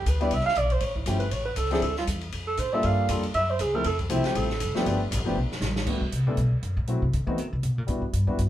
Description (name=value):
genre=jazz, small-group swing and bop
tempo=238 BPM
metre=4/4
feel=swing 58% on 8ths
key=unclear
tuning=A4 = 438 Hz
part: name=dark alto saxophone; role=second line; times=0.0-4.9 s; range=C4 to F5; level=-27 LUFS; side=right 3 dB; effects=none
part: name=upright bass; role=bass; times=0.0-8.5 s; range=F1 to E3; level=-26 LUFS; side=equal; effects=none
part: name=open jazz drum kit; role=drums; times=0.1-8.5 s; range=crash cymbal, hi-hat, kick drum, ride cymbal, snare drum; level=-34 LUFS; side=equal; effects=none
part: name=warm concert grand piano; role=accompaniment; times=0.2-8.4 s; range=F3 to A4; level=-29 LUFS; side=left 2 dB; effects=none
room=moderate large studio reverb, RT60 0.8 s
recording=band playing live in one room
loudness=-24 LUFS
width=side -12 dB against mid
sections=0.0-5.9 A section; 5.9-8.5 A section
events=alto saxophone solo 0.0-5.9; drum fill 5.4-5.9; upright bass solo 5.9-8.5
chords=0.0 Em7 (rootless); 0.8 A7b13; 1.8 Dmadd9; 2.8 Gm7; 3.3 F#5; 3.8 Fmaj9; 4.9 G9; 5.9 Gmaj7; 6.9 F#m7b5; 7.4 B; 7.9 Em9